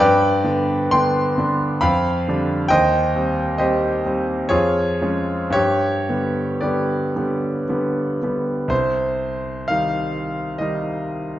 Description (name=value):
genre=classical, romantic character piece for solo piano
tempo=55-69 BPM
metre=3/4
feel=rubato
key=C minor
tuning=A4 = 439 Hz
part: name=clear concert grand piano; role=solo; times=0.0-11.4 s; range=C2 to C6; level=-18 LUFS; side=equal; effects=none
room=wet recital hall reverb, RT60 1.4 s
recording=nothing above 7.6 kHz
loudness=-18 LUFS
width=side -13 dB against mid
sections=0.0-8.7 A section; 8.7-11.4 B section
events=none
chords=0.0 G; 1.8 G7/F; 2.7 Cm/Eb; 4.5 Db/F; 5.5 G; 8.7 Cm